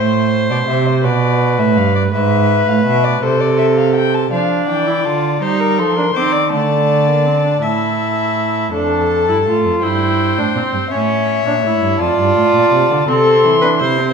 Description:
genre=classical, baroque-style fugue for string quartet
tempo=55 BPM (dotted quarters)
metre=6/8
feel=straight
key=A minor, D minor from 4.3 s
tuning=A4 = 439 Hz
part: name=dark violin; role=melody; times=0.0-14.1 s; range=C5 to D6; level=-20 LUFS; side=left 9 dB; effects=none
part: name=rich violin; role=second line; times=0.0-14.1 s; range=A4 to E5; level=-17 LUFS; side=left 3 dB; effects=none
part: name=warm cello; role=bass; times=0.0-14.1 s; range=F2 to G3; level=-17 LUFS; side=right 6 dB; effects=none
part: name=rich viola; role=accompaniment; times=4.3-14.1 s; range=A3 to F4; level=-19 LUFS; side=right 4 dB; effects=none
room=wet recital hall reverb, RT60 1.4 s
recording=minimal, uncompressed stereo recording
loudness=-12 LUFS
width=side -6 dB against mid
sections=0.0-4.3 A section; 4.3-8.7 B section; 8.7-14.1 C section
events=none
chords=0.0 Am; 1.0 Bm7; 2.1 E/G#; 3.2 Am/C; 4.3 Dm; 5.4 Eb; 6.5 Asus4/D; 7.6 A5; 8.7 Dm/F; 9.8 Em7/G; 10.9 A7; 12.0 Dm; 13.1 Am/C

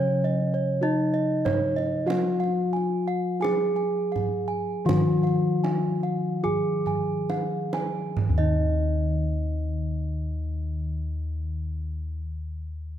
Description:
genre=Javanese gamelan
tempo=33-52 BPM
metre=4/4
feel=straight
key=unclear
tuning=A4 = 439 Hz
part: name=gamelan-type bronze metallophone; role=melody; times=0.0-12.2 s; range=Db4-25c to Ab4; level=-29 LUFS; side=left 1 dB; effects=none
part: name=gamelan-type bronze metallophone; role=accompaniment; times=0.0-12.2 s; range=Db3-25c to Gb3-45c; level=-30 LUFS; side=equal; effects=none
part: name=gamelan-type bronze metallophone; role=arpeggios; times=0.0-12.2 s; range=Db5-25c to Ab5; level=-31 LUFS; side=right 4 dB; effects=none
part: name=gamelan-type bossed gongs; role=bass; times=0.0-12.1 s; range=Eb2 to Gb4-45c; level=-28 LUFS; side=left 1 dB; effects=none
part: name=kendang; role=percussion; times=0.3-9.0 s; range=none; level=-32 LUFS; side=right 3 dB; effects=none
room=light reverb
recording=close, detailed microphones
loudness=-23 LUFS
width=side -10 dB against mid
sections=0.0-8.2 A section; 8.2-13.0 B section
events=slowing down 0.0-8.2; drum fill 6.5-8.2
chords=none

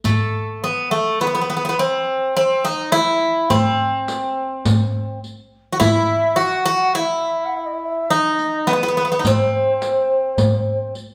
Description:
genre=Turkish makam ensemble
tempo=104 BPM (eighths)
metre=10/8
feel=straight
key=unclear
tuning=A4 = 440 Hz
part: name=Greek bouzouki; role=melody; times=0.0-10.9 s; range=A3 to F#4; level=-20 LUFS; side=equal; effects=none
part: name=riq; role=percussion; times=0.0-11.1 s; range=none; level=-27 LUFS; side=equal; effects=none
part: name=darbuka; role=percussion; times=0.1-11.1 s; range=none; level=-24 LUFS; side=equal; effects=none
part: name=breathy reedy low ney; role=second line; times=5.8-11.0 s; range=B4 to F#5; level=-25 LUFS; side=equal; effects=none
room=wet large studio reverb, RT60 1.1 s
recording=band playing live in one room, faint mains hum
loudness=-19 LUFS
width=mono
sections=0.0-11.1 A section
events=none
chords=none

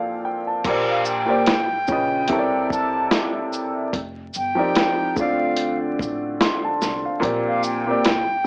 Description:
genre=lo-fi hip hop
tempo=73 BPM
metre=4/4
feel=swing 55% on 16ths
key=Bb major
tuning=A4 = 441 Hz
part: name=clear upright piano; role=accompaniment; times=0.0-8.5 s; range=Bb2 to C6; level=-24 LUFS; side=equal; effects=cassette tape, low-pass filter
part: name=lo-fi sampler-style drum kit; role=drums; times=0.6-8.3 s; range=crash cymbal, hi-hat, kick drum, shaker, snare drum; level=-25 LUFS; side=equal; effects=cassette tape
part: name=upright bass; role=bass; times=0.7-8.3 s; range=F1 to D2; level=-38 LUFS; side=equal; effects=none
part: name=breathy concert flute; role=melody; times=0.9-8.5 s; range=F5 to A5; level=-26 LUFS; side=equal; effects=low-pass filter, cassette tape
room=moderate studio reverb, RT60 0.5 s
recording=home recording on cassette, vinyl crackle, small speaker sound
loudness=-22 LUFS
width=mono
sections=0.6-8.5 A section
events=break 0.0-0.6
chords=0.0 Bbmaj7; 0.6 Bb69; 1.5 Db9; 2.3 C13; 3.9 F13sus4; 5.2 Dm7; 7.2 Bb69

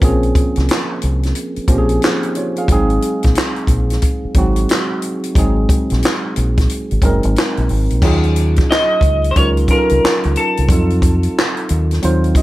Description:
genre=R&B, neo-soul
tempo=90 BPM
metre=4/4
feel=swing 63% on 16ths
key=unclear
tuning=A4 = 445 Hz
part: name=mellow tine electric piano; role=accompaniment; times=0.0-12.4 s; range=F3 to F5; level=-19 LUFS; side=right 1 dB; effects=lush chorus
part: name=deep dub fingered electric bass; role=bass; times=0.0-12.3 s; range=Gb1 to F2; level=-16 LUFS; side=equal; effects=none
part: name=compact cocktail drum kit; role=drums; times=0.0-12.4 s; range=crash cymbal, handclaps, hi-hat, kick drum, snare drum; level=-16 LUFS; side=equal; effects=none
part: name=electric guitar through a small old amp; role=melody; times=8.7-11.7 s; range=A4 to Eb5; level=-17 LUFS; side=equal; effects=lush chorus
room=little or no reverb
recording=vinyl crackle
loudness=-13 LUFS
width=side -17 dB against mid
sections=0.0-8.0 A section; 8.0-12.4 B section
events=none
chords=0.0 Bbm9; 2.7 Ab7; 8.0 Ebm11; 10.7 F7b9

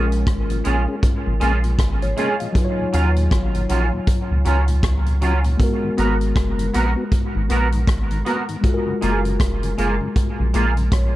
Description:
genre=lovers rock reggae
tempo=79 BPM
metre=4/4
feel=swing 60% on 16ths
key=Eb minor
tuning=A4 = 440 Hz
part: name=mellow tine electric piano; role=accompaniment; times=0.0-11.2 s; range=Gb3 to F5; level=-26 LUFS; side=left 2 dB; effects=analog chorus, dub echo
part: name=twangy electric guitar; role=stabs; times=0.0-10.7 s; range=Gb3 to Bb4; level=-25 LUFS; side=right 3 dB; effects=ensemble chorus, dub echo
part: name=round analog bass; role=bass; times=0.0-11.2 s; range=F1 to Eb2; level=-20 LUFS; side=equal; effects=none
part: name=vintage drum kit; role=drums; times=0.1-11.1 s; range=hi-hat, kick drum, rim click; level=-21 LUFS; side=equal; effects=none
part: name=mellow tonewheel organ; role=accompaniment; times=0.5-10.8 s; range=Eb2 to Ab4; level=-29 LUFS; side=left 3 dB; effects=slow rotary speaker, dub echo
room=light reverb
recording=none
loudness=-17 LUFS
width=side -16 dB against mid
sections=0.0-11.2 A section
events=none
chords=0.0 Bbm7; 2.6 Ebm9; 5.6 Abm9; 8.6 Gbmaj9

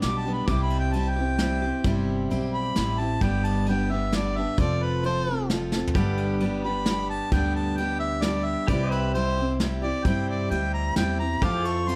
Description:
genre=honky-tonk and classic country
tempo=132 BPM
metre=3/4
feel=straight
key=unclear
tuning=A4 = 440 Hz
part: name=mellow harmonica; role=second line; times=0.0-12.0 s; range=B4 to D6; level=-32 LUFS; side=equal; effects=none
part: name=picked steel-string acoustic guitar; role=accompaniment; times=0.0-12.0 s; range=G2 to A4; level=-30 LUFS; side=equal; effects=none
part: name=upright bass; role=bass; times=0.0-12.0 s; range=F1 to G2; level=-31 LUFS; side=equal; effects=none
part: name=soft brush drum kit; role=drums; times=0.0-12.0 s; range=kick drum, ride cymbal, snare drum, toms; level=-32 LUFS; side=equal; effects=none
part: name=pedal steel guitar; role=sustained chords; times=6.0-12.0 s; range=G4 to F5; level=-38 LUFS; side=equal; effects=none
room=light reverb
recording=none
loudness=-25 LUFS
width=mono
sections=0.0-12.0 A section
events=harmonica solo 0.0-12.0; drum fill 5.7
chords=0.5 C; 3.2 G; 4.6 F; 6.0 G; 8.7 C; 11.4 F

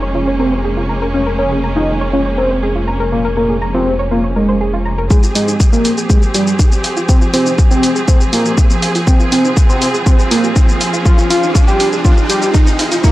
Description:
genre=melodic techno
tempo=121 BPM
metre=4/4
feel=straight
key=F minor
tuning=A4 = 439 Hz
part: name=warm studio string section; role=sustained chords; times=0.0-13.1 s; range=F3 to Db5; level=-20 LUFS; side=equal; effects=sidechain pumping
part: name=soft round pluck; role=arpeggios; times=0.0-13.0 s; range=C4 to Bb5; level=-23 LUFS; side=equal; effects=chorus, sidechain pumping, tape echo
part: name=dark detuned saw bass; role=bass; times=0.0-5.1 s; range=F1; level=-20 LUFS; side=equal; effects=sidechain pumping
part: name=fat analog lead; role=melody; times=0.1-13.1 s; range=G3 to G4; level=-16 LUFS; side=equal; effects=phaser, sidechain pumping, tape echo
part: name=electronic kick drum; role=drums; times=5.1-13.1 s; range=none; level=-10 LUFS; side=equal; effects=none
part: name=electronic shaker and hi-hat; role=drums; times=5.1-13.1 s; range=none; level=-21 LUFS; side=left 1 dB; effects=high-pass filter on perc, high-pass filter on hats, high-pass filter on room
part: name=riser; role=sound effects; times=8.0-13.1 s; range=none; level=-23 LUFS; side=right 2 dB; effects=none
room=digital ambience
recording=dry, gritty hardware recording, transformer saturation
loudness=-11 LUFS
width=side -16 dB against mid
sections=0.0-5.1 A section; 5.1-13.1 B section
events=filter sweep on synth arpeggio sound 0.0-5.1; build-up 5.1-13.1; riser 8.0-13.1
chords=0.0 Bbm7/F; 5.1 Fm

